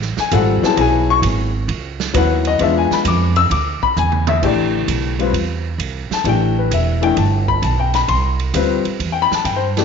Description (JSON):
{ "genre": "modal jazz", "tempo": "131 BPM", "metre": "4/4", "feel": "swing 68% on 8ths", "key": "A minor from 4.4 s", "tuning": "A4 = 440 Hz", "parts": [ { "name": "upright bass", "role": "bass", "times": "0.0-9.8 s", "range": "E1 to G2", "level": "-19 LUFS", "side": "right 3 dB", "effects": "none" }, { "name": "swinging big-band drum kit", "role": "drums", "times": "0.0-9.8 s", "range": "crash cymbal, hi-hat, kick drum, ride cymbal, snare drum, toms", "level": "-25 LUFS", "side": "right 11 dB", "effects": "none" }, { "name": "warm upright piano", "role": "accompaniment", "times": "0.2-9.8 s", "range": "E3 to E6", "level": "-17 LUFS", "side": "left 8 dB", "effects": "none" } ], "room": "moderate echo chamber reverb, RT60 1.4 s, small room ambience", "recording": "1960s-style stereo with parts hard left and right, nothing above 7.5 kHz", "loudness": "-14 LUFS", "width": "side -6 dB against mid", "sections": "0.0-4.4 A section; 4.4-9.8 A section", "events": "drum fill 4.0-4.4", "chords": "0.0 F#9sus4; 2.6 E7b9; 4.4 Am11", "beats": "0.32 | 0.78 1.23 1.69 2.15 | 2.60 3.06 3.52 3.97 | 4.43 4.89 5.34 5.80 | 6.26 6.71 7.17 7.63 | 8.09 8.54 9.00 9.46" }